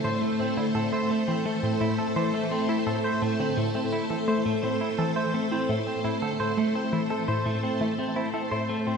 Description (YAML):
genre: ambient, sequencer-driven space music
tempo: 85 BPM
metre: 4/4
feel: straight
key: A minor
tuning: A4 = 439 Hz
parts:
  - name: string machine, full ensemble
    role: sustained chords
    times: 0.0-9.0 s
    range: A3 to E5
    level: -27 LUFS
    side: left 1 dB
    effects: ensemble chorus
  - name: clean electric guitar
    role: arpeggios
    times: 0.0-9.0 s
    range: A3 to C5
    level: -30 LUFS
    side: right 2 dB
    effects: auto-pan, tape echo
  - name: analog pluck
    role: riff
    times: 0.0-8.9 s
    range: A2 to E4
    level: -30 LUFS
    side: equal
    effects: chorus, phaser, tape echo
room: wet echo chamber reverb, RT60 2.2 s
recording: echo-heavy mix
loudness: -24 LUFS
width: side -6 dB against mid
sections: 0.0-9.0 A section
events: none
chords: 0.0 Am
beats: | 0.04 0.75 1.46 2.16 | 2.87 3.57 4.28 4.99 | 5.69 6.40 7.10 7.81 | 8.52